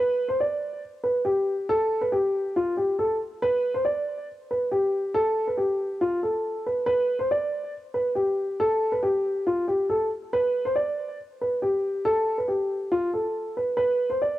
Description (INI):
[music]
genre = hip hop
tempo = 139 BPM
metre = 4/4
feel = half-time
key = unclear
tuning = A4 = 439 Hz
[part]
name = dark concert grand piano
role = solo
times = 0.0-14.4 s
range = F4 to D5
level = -23 LUFS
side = equal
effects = none
[sound]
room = small room ambience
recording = home recording on cassette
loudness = -23 LUFS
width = side -14 dB against mid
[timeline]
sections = 0.0-13.8 A section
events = none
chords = none